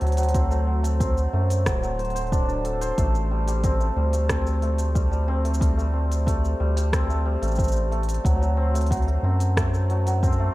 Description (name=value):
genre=folktronica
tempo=91 BPM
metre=4/4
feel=straight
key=A dorian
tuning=A4 = 441 Hz
part: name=cimbalom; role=arpeggios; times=0.0-10.5 s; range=F#3 to C5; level=-27 LUFS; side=equal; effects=tape echo
part: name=round analog bass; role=bass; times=0.0-10.5 s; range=D1 to F#2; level=-23 LUFS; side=equal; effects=none
part: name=organic electronic drum kit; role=drums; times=0.0-10.4 s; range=hi-hat, rim click, shaker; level=-33 LUFS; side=equal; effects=none
part: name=electronic kick drum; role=drums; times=0.3-10.4 s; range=none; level=-24 LUFS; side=equal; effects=none
room=digital ambience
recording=none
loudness=-20 LUFS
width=side -18 dB against mid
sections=0.0-10.5 A section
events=none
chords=0.0 D7; 3.0 Am7; 8.3 D7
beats=| 0.34 1.00 1.66 2.32 | 2.98 3.64 4.29 4.95 | 5.61 6.27 6.93 7.59 | 8.25 8.91 9.57 10.23